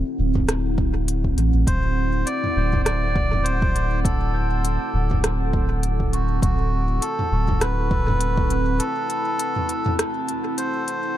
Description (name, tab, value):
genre	ambient dub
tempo	101 BPM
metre	4/4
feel	swing 57% on 16ths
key	D mixolydian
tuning	A4 = 440 Hz
part	deep dark ambient pad	sustained chords	0.0-11.2 s	C4 to F#5	-27 LUFS	right 1 dB	chorus, built-in reverb
part	soft dub sub bass	bass	0.0-8.8 s	D1 to A1	-22 LUFS	equal	none
part	electronic kick drum	drums	0.4-8.5 s	none	-25 LUFS	equal	overdrive
part	organic electronic drum kit	drums	0.4-11.0 s	hi-hat, rim click, toms	-27 LUFS	equal	dub echo
part	melodica	melody	1.7-11.2 s	F#4 to D5	-26 LUFS	equal	dub echo
room	light reverb, digital ambience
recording	none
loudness	-20 LUFS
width	side -12 dB against mid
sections	0.0-11.2 A section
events	break 8.8-11.2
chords	0.0 D9